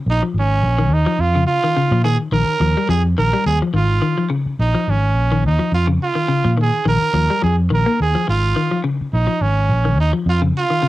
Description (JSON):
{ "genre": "afrobeat", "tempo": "106 BPM", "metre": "4/4", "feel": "swing 56% on 16ths", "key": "Bb dorian", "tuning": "A4 = 440 Hz", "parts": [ { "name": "growling trumpet", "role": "melody", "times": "0.1-10.9 s", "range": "Db4 to Bb4", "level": "-20 LUFS", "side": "right 4 dB", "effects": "cassette tape" }, { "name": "fingered electric bass", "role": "bass", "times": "0.1-10.5 s", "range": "Ab1 to Bb2", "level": "-17 LUFS", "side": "equal", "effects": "transformer saturation" }, { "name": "electric guitar at the edge of break-up", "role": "arpeggios", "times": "0.2-10.9 s", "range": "Db3 to Bb3", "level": "-20 LUFS", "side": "left 4 dB", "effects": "spring reverb, cassette tape" } ], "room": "moderate booth ambience, RT60 0.2 s", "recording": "home recording on cassette", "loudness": "-15 LUFS", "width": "side -16 dB against mid", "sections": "0.0-10.9 A section", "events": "none", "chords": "0.0 Bbm7" }